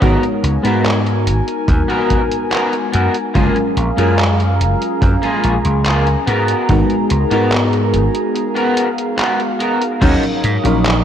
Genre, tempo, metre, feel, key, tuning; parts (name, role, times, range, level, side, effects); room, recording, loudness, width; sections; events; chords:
vaporwave; 72 BPM; 4/4; straight; G# dorian; A4 = 440 Hz
FM electric piano with soft pad layer; accompaniment; 0.0-11.0 s; F#3 to E#5; -19 LUFS; left 1 dB; lush chorus, analog delay
warbly tape-like pad; sustained chords; 0.0-11.0 s; B3 to D#6; -22 LUFS; equal; chorus, built-in reverb, phaser, vintage 12-bit sampler grit
electric guitar at the edge of break-up; riff; 0.0-10.9 s; A#3 to C#5; -20 LUFS; equal; analog chorus, vintage 12-bit sampler grit, analog delay
vintage slap bass; bass; 0.0-11.0 s; F#1 to G#2; -16 LUFS; equal
detuned 8-bit digital drum machine; drums; 0.0-11.0 s; crash cymbal, handclaps, hi-hat; -22 LUFS; equal; vintage 12-bit sampler grit, gated reverb
kick drum; drums; 0.0-10.2 s; -17 LUFS; equal; vintage 12-bit sampler grit
light reverb; -13 LUFS; side -9 dB against mid
0.0-10.0 A section; 10.0-11.0 B section
break 8.4-10.0
0.0 G#m9; 3.4 F#maj9; 6.3 G#m9; 10.0 D#m9